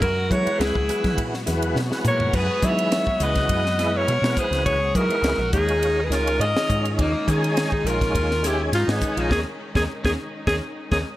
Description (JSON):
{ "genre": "electric jazz fusion", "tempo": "103 BPM", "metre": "4/4", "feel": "swing 53% on 16ths", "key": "Eb phrygian", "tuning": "A4 = 440 Hz", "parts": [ { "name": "clear alto saxophone", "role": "melody", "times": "0.0-11.0 s", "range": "Eb4 to Fb5", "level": "-24 LUFS", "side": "equal", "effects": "none" }, { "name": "overdriven electric guitar", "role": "second line", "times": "0.0-11.0 s", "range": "Bb3 to Db5", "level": "-30 LUFS", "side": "equal", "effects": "none" }, { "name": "tonewheel organ", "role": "accompaniment", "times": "0.0-11.0 s", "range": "Eb3 to Ab4", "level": "-28 LUFS", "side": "equal", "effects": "slow rotary speaker, chorus vibrato" }, { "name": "rich symphonic string section", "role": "sustained chords", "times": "0.0-11.2 s", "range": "Eb3 to Gb4", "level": "-33 LUFS", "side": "left 1 dB", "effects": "none" }, { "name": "woody fretless electric bass", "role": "bass", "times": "0.0-11.0 s", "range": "Bb1 to Gb3", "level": "-25 LUFS", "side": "equal", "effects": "none" }, { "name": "tight funk drum kit", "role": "drums", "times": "0.0-11.0 s", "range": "crash cymbal, hi-hat, kick drum, ride cymbal, snare drum, toms", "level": "-27 LUFS", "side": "equal", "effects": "none" } ], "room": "light reverb, studio reverb", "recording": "none", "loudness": "-19 LUFS", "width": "side -15 dB against mid", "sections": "0.0-11.2 A section", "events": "drum fill 1.8-2.3, 10.5-11.2; band accent 9.3-11.2; tonewheel organ fill 10.8-11.2", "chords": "0.0 Gb9sus4; 5.5 Eb9sus4" }